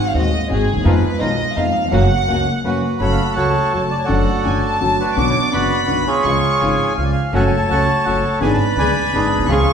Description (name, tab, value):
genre	tango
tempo	167 BPM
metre	3/4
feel	rubato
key	F# major, F# harmonic minor from 3.0 s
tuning	A4 = 439 Hz
part	warm studio violin section	second line	0.0-9.7 s	G#4 to D6	-22 LUFS	equal	none
part	warm concert grand piano	accompaniment	0.1-9.6 s	D1 to G#4	-19 LUFS	left 1 dB	none
part	muted studio string section	stabs	0.1-2.8, 7.3-9.6 s	G#3 to G#4	-26 LUFS	equal	none
part	upright bass	bass	0.1-9.6 s	F#1 to F2	-21 LUFS	right 1 dB	none
part	bandoneon	melody	2.6-9.7 s	D4 to B5	-19 LUFS	right 2 dB	none
room	wet large studio reverb, RT60 1.3 s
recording	band playing live in one room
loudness	-14 LUFS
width	side -7 dB against mid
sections	0.0-3.0 A section; 3.0-9.7 B section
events	violin section solo 0.0-3.0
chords	0.0 G#7; 0.9 Fm7b5; 1.9 F#; 3.0 F#m; 4.1 D/F#; 5.2 Bm; 6.2 C#; 7.3 F#m; 8.4 G#dim